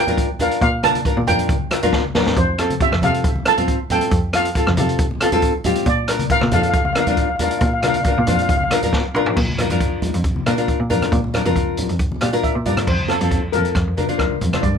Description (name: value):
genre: calypso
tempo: 137 BPM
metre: 4/4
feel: straight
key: unclear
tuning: A4 = 442 Hz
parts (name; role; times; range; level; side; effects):
- steel pan; melody; 0.0-8.8, 12.4-14.8 s; A4 to A5; -21 LUFS; right 1 dB; tape echo
- nylon-string guitar; accompaniment; 0.0-14.6 s; C4 to C5; -21 LUFS; left 2 dB; none
- clear cello; bass; 0.0-14.8 s; F2 to C3; -22 LUFS; equal; none
- open jazz drum kit; drums; 0.1-14.7 s; crash cymbal, hi-hat, kick drum, rim click, snare drum, toms; -22 LUFS; equal; none
- congas; percussion; 0.1-14.8 s; none; -26 LUFS; left 1 dB; none
room: little or no reverb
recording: close, detailed microphones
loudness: -16 LUFS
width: side -7 dB against mid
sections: 0.0-9.4 A section; 9.4-12.9 B section; 12.9-14.8 C section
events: drum fill 1.9-2.4, 8.9-9.4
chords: 0.0 Bb6; 2.4 F; 5.9 Bb; 12.9 F; 13.8 Bb/F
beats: 0.18 | 0.61 1.05 1.49 1.93 | 2.37 2.81 3.24 3.68 | 4.12 4.55 4.99 5.43 | 5.87 6.30 6.74 7.18 | 7.62 8.05 8.49 8.93 | 9.37 9.81 10.24 10.68 | 11.12 11.56 12.00 12.44 | 12.88 13.32 13.76 14.20 | 14.64